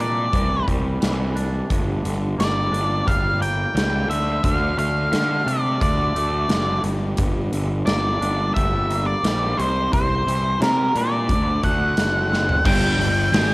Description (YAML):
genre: quiet-loud alternative rock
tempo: 88 BPM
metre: 4/4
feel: straight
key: G dorian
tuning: A4 = 440 Hz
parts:
  - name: octave-fuzz lead guitar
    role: melody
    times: 0.0-13.5 s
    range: Bb4 to G5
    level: -22 LUFS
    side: equal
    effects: distortion, cassette tape
  - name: twangy electric guitar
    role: arpeggios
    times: 0.0-12.7 s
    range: G2 to D4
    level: -30 LUFS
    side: right 1 dB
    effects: cassette tape
  - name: fuzz picked electric bass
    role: bass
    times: 0.0-13.5 s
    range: F#1 to D3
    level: -23 LUFS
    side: equal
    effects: overdrive
  - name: big rock drum kit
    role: drums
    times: 0.0-13.5 s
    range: crash cymbal, hi-hat, kick drum, snare drum, toms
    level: -24 LUFS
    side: equal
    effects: none
  - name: thick fuzz guitar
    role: riff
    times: 12.6-13.5 s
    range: G2 to Ab3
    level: -26 LUFS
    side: left 4 dB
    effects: distortion, cassette tape
  - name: thick fuzz guitar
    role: riff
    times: 12.6-13.5 s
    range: G2 to Ab3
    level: -25 LUFS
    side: right 3 dB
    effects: distortion, cassette tape
room: small room reverb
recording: home recording on cassette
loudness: -18 LUFS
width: side -22 dB against mid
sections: 0.0-12.7 A section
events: drum fill 12.3-12.7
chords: 0.0 Cadd9; 1.7 Gm; 4.1 Dm; 6.8 Gm; 9.6 Cadd9; 11.3 D7; 12.7 N.C.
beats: 0.33 1.02 | 1.70 2.39 3.07 3.76 | 4.45 5.13 5.82 6.50 | 7.19 7.88 8.56 9.25 | 9.93 10.62 11.30 11.98 | 12.66 13.34